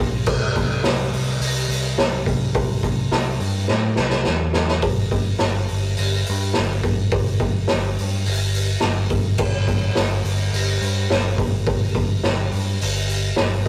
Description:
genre	garage rock duo or trio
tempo	105 BPM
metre	4/4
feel	straight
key	G major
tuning	A4 = 438 Hz
part	picked electric bass	bass	0.0-13.7 s	G1 to A2	-24 LUFS	equal	none
part	raw garage drum kit	drums	0.3-13.7 s	crash cymbal, hi-hat, kick drum, snare drum	-23 LUFS	equal	none
room	light reverb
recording	rough rehearsal-room recording, tube saturation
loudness	-21 LUFS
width	mono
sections	0.0-4.8 A section; 4.8-13.7 B section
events	drum fill 3.7-4.8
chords	none

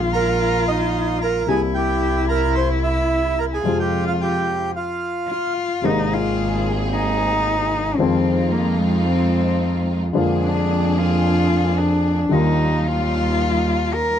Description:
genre	tango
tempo	111 BPM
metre	4/4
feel	rubato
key	F minor, Ab major from 5.8 s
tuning	A4 = 440 Hz
part	rich cello	second line	0.0-14.2 s	Ab3 to Bb4	-22 LUFS	left 4 dB	none
part	warm upright piano	accompaniment	0.0-14.2 s	Ab1 to F4	-24 LUFS	left 2 dB	none
part	rich double bass	bass	0.0-14.2 s	Ab1 to F2	-22 LUFS	right 2 dB	none
part	bandoneon	melody	0.1-5.5 s	Eb4 to C6	-22 LUFS	right 4 dB	none
part	clear symphonic string section	stabs	5.8-14.2 s	G3 to Ab4	-26 LUFS	right 1 dB	none
room	light reverb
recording	dark, warm production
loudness	-17 LUFS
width	side -9 dB against mid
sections	0.0-5.8 A section; 5.8-14.2 B section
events	stop 4.7-5.8; cello solo 5.8-14.2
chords	0.0 Bb7sus4; 1.5 C7; 3.6 Fm; 5.8 Abadd9; 8.0 Fm7; 10.2 Bb7/F; 12.3 Ebadd9

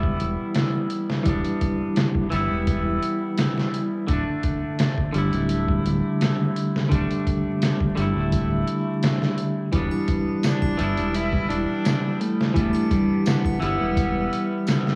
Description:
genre	trip hop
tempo	85 BPM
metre	4/4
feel	straight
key	E minor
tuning	A4 = 440 Hz
part	clean electric guitar	accompaniment	0.0-15.0 s	D3 to E4	-26 LUFS	equal	harmonic tremolo, vintage 12-bit sampler grit
part	round analog bass	bass	0.0-14.3 s	D1 to G1	-28 LUFS	equal	none
part	trip hop sampler-style drum kit	drums	0.0-15.0 s	hi-hat, kick drum, snare drum	-27 LUFS	equal	none
part	triangle and tambourine	percussion	9.9-14.8 s	none	-48 LUFS	equal	none
part	rich cello	melody	10.4-15.0 s	G3 to E4	-28 LUFS	equal	none
room	moderate spring reverb, RT60 2.3 s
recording	worn, warbling old tape, cassette tape, vinyl crackle, warbly pitch drift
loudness	-23 LUFS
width	mono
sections	0.0-15.0 A section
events	none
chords	0.0 Em7; 4.1 Dsus4; 9.7 Em7

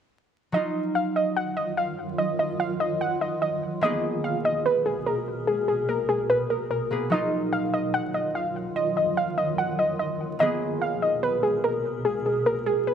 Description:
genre	hip hop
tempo	146 BPM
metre	4/4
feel	half-time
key	Eb minor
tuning	A4 = 439 Hz
part	warbly dusty pluck	melody	0.5-12.9 s	Ab4 to Gb5	-24 LUFS	equal	chorus
part	concert harp	accompaniment	0.5-12.9 s	Gb3 to Ab4	-31 LUFS	right 1 dB	none
part	granular cloud pad	sustained chords	1.3-12.9 s	Cb3 to Bb4	-30 LUFS	equal	built-in reverb
room	moderate plate reverb, RT60 2.8 s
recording	vinyl crackle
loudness	-23 LUFS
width	side -8 dB against mid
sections	0.5-12.9 A section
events	none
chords	0.5 Ebmadd9; 3.8 Abmadd9; 7.1 Ebmadd9; 10.4 Abmadd9

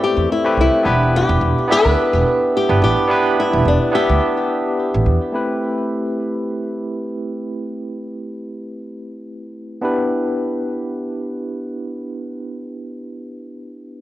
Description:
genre	sunset chillout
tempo	107 BPM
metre	4/4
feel	swing 57% on 16ths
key	A minor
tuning	A4 = 440 Hz
part	flamenco guitar	melody	0.0-5.0 s	D4 to B4	-19 LUFS	left 4 dB	cassette tape, tape echo
part	barky tine electric piano	accompaniment	0.0-14.0 s	A3 to E5	-20 LUFS	right 1 dB	medium stereo tremolo, auto-pan
part	upright bass	bass	0.2-5.2 s	E1 to E2	-18 LUFS	right 2 dB	none
room	light reverb, small room reverb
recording	home recording on cassette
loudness	-16 LUFS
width	side -14 dB against mid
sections	0.0-5.3 A section; 5.3-14.0 B section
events	none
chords	0.0 Am7; 0.9 Em7; 5.3 Am7; 9.8 Em7

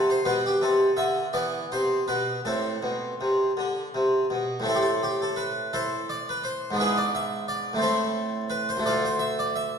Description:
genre	classical, baroque-style suite movement for harpsichord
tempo	53-59 BPM (dotted quarters)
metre	6/8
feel	rubato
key	A minor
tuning	A4 = 440 Hz
part	harpsichord	solo	0.0-9.8 s	D2 to E5	-23 LUFS	equal	none
room	wet recital hall reverb, RT60 1.5 s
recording	recorded in a church or concert hall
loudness	-23 LUFS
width	side -6 dB against mid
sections	0.0-4.7 A section; 4.7-9.8 B section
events	none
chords	0.2 Am11/B; 1.3 E5; 2.4 Am; 6.8 E7/G#; 7.8 Am; 8.9 Dm

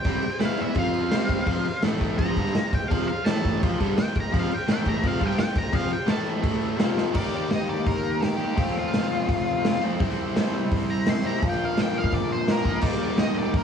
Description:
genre	garage rock duo or trio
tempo	169 BPM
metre	4/4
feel	straight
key	unclear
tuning	A4 = 440 Hz
part	octave-fuzz lead guitar	melody	0.0-13.6 s	F4 to C6	-30 LUFS	left 1 dB	distortion
part	combo organ	sustained chords	0.0-13.6 s	B3 to F5	-37 LUFS	right 1 dB	none
part	raw garage drum kit	drums	0.0-13.6 s	crash cymbal, hi-hat, kick drum, snare drum	-25 LUFS	equal	vintage 12-bit sampler grit
part	biting overdriven guitar	riff	0.1-13.6 s	F2 to G4	-26 LUFS	equal	none
room	light reverb, studio ambience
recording	small room ambience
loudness	-22 LUFS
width	side -7 dB against mid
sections	0.0-7.2 A section; 7.2-13.6 B section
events	lead electric guitar solo 0.0-7.2; drum fill 7.0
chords	0.4 E5; 0.8 F5; 1.1 C5; 1.5 F5; 1.8 A5; 2.2 F5; 3.3 A5; 3.6 F5; 4.7 A5; 5.0 F5; 6.1 A5; 6.8 F5; 7.2 Eb; 8.6 F; 10.0 C; 11.4 Bb; 12.8 Eb

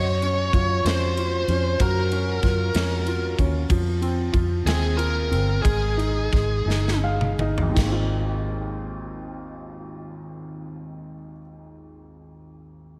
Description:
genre	six-eight pop ballad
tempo	53-63 BPM (dotted quarters)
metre	6/8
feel	straight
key	Ab major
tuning	A4 = 440 Hz
part	bluesy overdriven lead guitar	melody	0.0-7.0 s	Ab4 to Db5	-29 LUFS	equal	distortion, analog delay
part	clear upright piano	accompaniment	0.0-13.0 s	Ab1 to F5	-32 LUFS	equal	subtle chorus
part	vintage muted fingered electric bass	bass	0.0-11.3 s	G1 to Gb2	-27 LUFS	equal	none
part	modern studio drum kit	drums	0.2-7.9 s	china cymbal, kick drum, ride cymbal, snare drum, toms	-29 LUFS	equal	none
room	moderate lush hall reverb, RT60 2.7 s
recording	dreamy mix soaked in reverb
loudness	-23 LUFS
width	mono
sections	0.0-7.8 A section; 7.8-12.3 B section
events	slowing down 3.7-7.8; drum fill 6.7-7.8; upright piano fill 6.7-7.8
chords	0.0 Gbmaj7; 3.7 Abmaj13 (rootless); 5.6 Ab5; 7.8 Ab6

